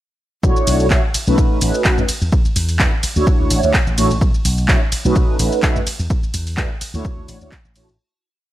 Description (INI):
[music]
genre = filtered disco house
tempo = 127 BPM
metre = 4/4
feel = swing 54% on 16ths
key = B minor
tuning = A4 = 440 Hz
[part]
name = mellow synth brass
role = accompaniment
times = 0.4-7.9 s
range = A3 to C#5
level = -19 LUFS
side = right 1 dB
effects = chorus, phaser, sidechain pumping
[part]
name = slap bass with an envelope filter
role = bass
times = 0.4-8.0 s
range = A1 to F#2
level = -19 LUFS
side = equal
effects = sidechain pumping
[part]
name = electronic kick drum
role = drums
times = 0.4-7.6 s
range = none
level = -17 LUFS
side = equal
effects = none
[part]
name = punchy analog drum machine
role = drums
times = 0.4-8.0 s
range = handclaps, hi-hat, ride cymbal, shaker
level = -22 LUFS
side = equal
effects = sidechain pumping on perc, sidechain pumping on hats, sidechain pumping on cymbals
[sound]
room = digital ambience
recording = none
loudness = -14 LUFS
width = side -14 dB against mid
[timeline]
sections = 0.4-8.0 drop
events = drop 0.4-8.0; fade-out 5.5-8.0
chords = 0.4 Bm11; 1.4 B7; 2.1 Esus4; 3.0 Dmaj9; 4.2 B7sus2; 5.2 B7; 5.9 E7sus4; 6.8 Dmaj9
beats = | 0.43 0.91 1.38 1.85 | 2.32 2.80 3.27 3.74 | 4.21 4.69 5.16 5.63 | 6.10 6.58 7.05 7.52